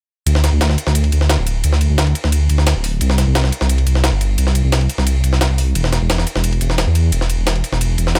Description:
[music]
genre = liquid drum and bass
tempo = 175 BPM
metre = 4/4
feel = straight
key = unclear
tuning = A4 = 440 Hz
[part]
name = dark detuned saw bass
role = bass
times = 0.3-8.2 s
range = D1 to E2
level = -17 LUFS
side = equal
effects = tube saturation
[part]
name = electronic hi-hat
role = drums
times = 0.3-8.2 s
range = none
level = -29 LUFS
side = equal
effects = none
[part]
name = jungle sampler-style drum kit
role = drums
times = 0.3-8.2 s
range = hi-hat, ride cymbal, snare drum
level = -23 LUFS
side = equal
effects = high-pass filter on cymbals, high-pass filter on snare, high-pass filter on hats
[sound]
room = little or no reverb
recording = none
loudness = -16 LUFS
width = mono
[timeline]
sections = 0.3-8.2 A section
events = none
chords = none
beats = | 0.27 0.61 0.95 1.30 | 1.64 1.98 2.33 2.67 | 3.01 3.35 3.70 4.04 | 4.38 4.72 5.07 5.41 | 5.75 6.10 6.44 6.78 | 7.12 7.47 7.81 8.15

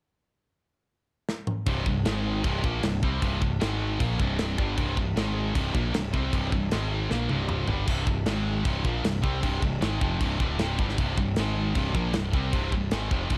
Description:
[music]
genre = heavy metal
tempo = 155 BPM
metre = 4/4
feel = straight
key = C minor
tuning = A4 = 443 Hz
[part]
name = tight metal drum kit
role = drums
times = 1.3-13.4 s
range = crash cymbal, kick drum, snare drum, splash cymbal, toms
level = -31 LUFS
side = equal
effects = none
[part]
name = high-gain distorted guitar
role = riff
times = 1.7-13.4 s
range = C2 to C4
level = -31 LUFS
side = equal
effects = distortion
[part]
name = fuzz picked electric bass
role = bass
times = 1.7-13.4 s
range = C1 to C2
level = -32 LUFS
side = equal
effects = overdrive
[sound]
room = studio reverb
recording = dark, warm production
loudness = -27 LUFS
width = mono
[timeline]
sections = 0.1-1.7 A section; 1.7-13.4 B section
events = drum fill 1.3-1.7, 7.1-7.9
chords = 0.1 N.C.; 1.7 C5; 2.1 Ab5; 2.4 C5; 3.6 Ab5; 4.0 C5; 5.2 Ab5; 5.6 C5; 6.7 Ab5; 7.1 C5; 8.3 Ab5; 8.7 C5; 11.4 Ab5; 11.8 C5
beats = | 0.11 0.50 0.89 1.28 | 1.67 2.06 2.44 2.83 | 3.22 3.61 4.00 4.39 | 4.78 5.17 5.55 5.94 | 6.33 6.72 7.11 7.49 | 7.88 8.27 8.66 9.05 | 9.43 9.82 10.21 10.60 | 10.98 11.37 11.76 12.15 | 12.54 12.92 13.31

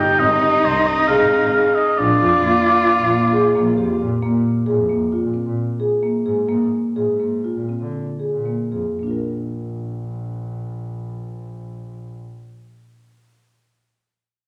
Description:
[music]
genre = contemporary instrumental, chamber music in an uneven meter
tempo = 109-134 BPM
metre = 5/4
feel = straight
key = Bb mixolydian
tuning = A4 = 440 Hz
[part]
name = warm oboe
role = melody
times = 0.0-3.8 s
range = C5 to G5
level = -20 LUFS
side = equal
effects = none
[part]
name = warm cello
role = second line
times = 0.0-4.0 s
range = Eb4 to F4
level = -23 LUFS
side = equal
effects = none
[part]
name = marimba with medium mallets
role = arpeggios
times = 0.0-12.3 s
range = Bb3 to Bb4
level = -22 LUFS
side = equal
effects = none
[part]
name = warm double bass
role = bass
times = 0.0-12.2 s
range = Ab1 to D3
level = -29 LUFS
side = equal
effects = none
[part]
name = glockenspiel with rubber mallets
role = texture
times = 2.3-3.6 s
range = D6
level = -36 LUFS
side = equal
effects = none
[sound]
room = wet scoring stage reverb, RT60 1.6 s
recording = none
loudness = -19 LUFS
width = mono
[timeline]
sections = 0.0-4.2 A section; 4.2-9.0 B section; 9.0-11.7 C section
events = slowing down 5.1-9.0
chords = 0.0 Abmaj7; 2.0 Bb; 4.2 Bb7sus2; 9.0 Bb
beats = 0.20 0.64 1.09 1.54 | 1.98 2.43 2.88 3.33 3.77 | 4.22 4.67 5.12 5.56 6.02 | 6.48 6.95 7.43 7.93 8.45 | 8.99 9.54 10.09 10.63 11.18

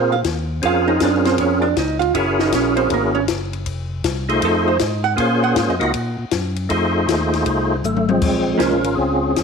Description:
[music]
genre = soul jazz organ trio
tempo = 158 BPM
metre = 4/4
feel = swing 65% on 8ths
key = Bb minor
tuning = A4 = 444 Hz
[part]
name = percussive tonewheel organ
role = melody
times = 0.0-9.4 s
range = F3 to Eb5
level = -19 LUFS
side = left 1 dB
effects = slow rotary speaker, overdrive, chorus vibrato
[part]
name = vintage hollow-body jazz guitar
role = accompaniment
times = 0.0-8.8 s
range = Bb3 to Gb5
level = -20 LUFS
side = right 10 dB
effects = none
[part]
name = tonewheel organ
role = bass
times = 0.0-9.4 s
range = F1 to Bb2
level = -24 LUFS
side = left 1 dB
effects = overdrive, chorus vibrato
[part]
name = compact cocktail drum kit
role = drums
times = 0.2-9.4 s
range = crash cymbal, hi-hat, kick drum, ride cymbal, snare drum, toms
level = -24 LUFS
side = left 7 dB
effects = none
[sound]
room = moderate echo chamber reverb, RT60 1.3 s, small room ambience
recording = 1960s-style stereo with parts hard left and right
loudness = -16 LUFS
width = side -5 dB against mid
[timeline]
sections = 0.0-8.2 A section; 8.2-9.4 B section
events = hollow-body jazz guitar solo 0.0-8.2; drum fill 7.8-8.2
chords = 0.0 Bbm9; 2.1 Gb7; 3.7 F7#9; 5.2 Bbm9; 5.9 Gb; 6.7 F7#9; 8.2 Bbm9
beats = 0.24 | 0.62 1.00 1.38 1.76 | 2.14 2.52 2.90 3.28 | 3.66 4.04 4.42 4.80 | 5.18 5.56 5.94 6.32 | 6.70 7.08 7.46 7.84 | 8.22 8.60 8.98 9.36

